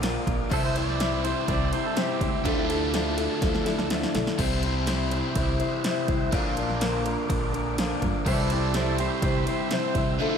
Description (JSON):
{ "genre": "folk rock and heartland rock", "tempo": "124 BPM", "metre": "4/4", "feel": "straight", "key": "unclear", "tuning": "A4 = 440 Hz", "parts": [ { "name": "picked old ladder-braced acoustic guitar", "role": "accompaniment", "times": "0.0-10.4 s", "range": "Bb2 to C5", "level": "-29 LUFS", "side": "left 6 dB", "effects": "slapback echo" }, { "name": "tonewheel organ", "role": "sustained chords", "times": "0.0-10.4 s", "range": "Bb4 to E6", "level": "-38 LUFS", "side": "right 1 dB", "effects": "slow rotary speaker, chorus vibrato" }, { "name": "overdriven electric guitar", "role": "riff", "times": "0.0-10.4 s", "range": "Bb2 to F4", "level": "-29 LUFS", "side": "right 2 dB", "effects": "phaser, slapback echo" }, { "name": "upright bass", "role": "bass", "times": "0.0-10.2 s", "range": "Bb1 to G2", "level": "-30 LUFS", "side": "right 1 dB", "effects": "none" }, { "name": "punchy analog drum machine", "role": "drums", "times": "0.0-10.1 s", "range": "crash cymbal, kick drum, ride cymbal, snare drum, splash cymbal", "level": "-30 LUFS", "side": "right 1 dB", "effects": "overdrive" }, { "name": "pedal steel guitar", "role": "second line", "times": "0.5-3.4, 8.3-10.0 s", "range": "G4 to D5", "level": "-33 LUFS", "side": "right 7 dB", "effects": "slapback echo" } ], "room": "moderate lush hall reverb, RT60 2.0 s", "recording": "big arena sound", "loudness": "-23 LUFS", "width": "side -7 dB against mid", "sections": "0.0-10.4 A section", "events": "drum fill 3.4-4.4", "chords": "0.0 Bb; 0.5 C; 2.5 Dmadd9; 4.4 C; 6.3 Bb; 8.3 C" }